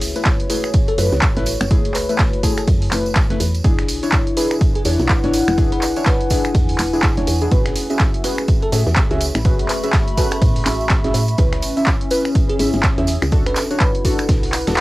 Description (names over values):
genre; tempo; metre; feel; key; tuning
deep house; 124 BPM; 4/4; swing 59% on 16ths; F# minor; A4 = 440 Hz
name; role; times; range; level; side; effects
deep mellow chord stab; stabs; 0.0-14.8 s; A3 to E5; -23 LUFS; left 1 dB; chorus, sidechain pumping, cassette tape, tape echo
woody FM bass; bass; 0.0-14.8 s; E1 to A2; -21 LUFS; equal; sidechain pumping
breakbeat sampler-style drum kit; drums; 0.0-14.8 s; ride cymbal, snare drum; -35 LUFS; equal; high-pass filter on cymbals, high-pass filter on snare
punchy analog drum machine; drums; 0.0-14.8 s; finger snaps, handclaps, hi-hat; -23 LUFS; equal; none
tambourine; percussion; 0.0-14.8 s; none; -31 LUFS; right 4 dB; none
warbly tape-like pad; texture; 0.0-14.8 s; A3 to C#6; -25 LUFS; left 1 dB; chorus, built-in reverb, sidechain pumping, cassette tape
electronic kick drum; drums; 0.3-14.4 s; none; -17 LUFS; equal; none
bell-like FM electric piano; melody; 0.5-14.2 s; G#4 to B4; -26 LUFS; equal; chorus, phaser, tape echo
room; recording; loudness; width
moderate booth ambience, RT60 0.3 s; home recording on cassette; -15 LUFS; side -18 dB against mid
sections
0.0-14.8 A section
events
none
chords
0.0 F#m9; 3.4 E7; 7.5 Amaj13; 11.4 C#m7; 13.3 E9sus4